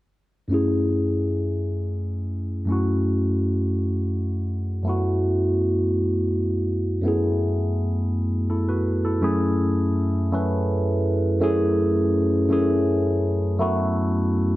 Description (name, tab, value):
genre	R&B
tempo	55 BPM (dotted quarters)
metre	6/8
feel	straight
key	F# minor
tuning	A4 = 440 Hz
part	barky tine electric piano	solo	0.5-14.6 s	F#2 to B4	-20 LUFS	equal	overdrive, phaser
room	light reverb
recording	dark, warm production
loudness	-20 LUFS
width	side -16 dB against mid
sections	0.5-9.2 A section; 9.2-14.6 B section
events	none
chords	0.5 F#m9; 4.9 F#m11; 9.2 F#m9; 13.6 F#m11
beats	| 0.50 1.59 | 2.68 3.77 | 4.86 5.96 | 7.05 8.14 | 9.23 10.32 | 11.41 12.50 | 13.59